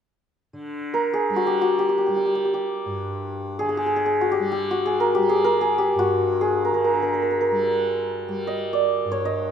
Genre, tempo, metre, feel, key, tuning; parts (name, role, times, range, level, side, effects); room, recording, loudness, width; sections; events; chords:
indian classical; free time; G raga todi; A4 = 440 Hz
tanpura; drone; 0.5-9.5 s; G2 to G3; -30 LUFS; left 1 dB
santur; melody; 0.9-9.5 s; F#4 to Eb5; -20 LUFS; equal
moderate concert hall reverb, RT60 2.0 s; minimal, uncompressed stereo recording; -20 LUFS; side -8 dB against mid
0.5-9.5 A section